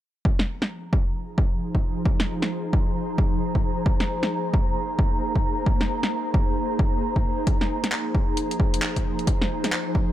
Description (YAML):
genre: UK garage, two-step garage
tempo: 133 BPM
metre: 4/4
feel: swing 63% on 16ths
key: F minor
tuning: A4 = 438 Hz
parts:
  - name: airy breathy pad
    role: sustained chords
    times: 0.2-10.1 s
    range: Bb5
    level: -33 LUFS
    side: right 3 dB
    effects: chorus, sidechain pumping
  - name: ethereal airy pad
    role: texture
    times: 0.7-10.1 s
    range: F3 to C5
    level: -29 LUFS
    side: equal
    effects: ensemble chorus, built-in reverb, sidechain pumping
  - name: electronic kick drum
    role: drums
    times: 0.3-10.1 s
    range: none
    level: -22 LUFS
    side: equal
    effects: none
  - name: garage drum kit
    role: drums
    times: 0.4-9.8 s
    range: handclaps, hi-hat, snare drum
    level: -27 LUFS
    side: equal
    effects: none
room: digital ambience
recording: none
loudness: -22 LUFS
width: side -13 dB against mid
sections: 0.3-10.1 A section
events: none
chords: 0.3 Fm7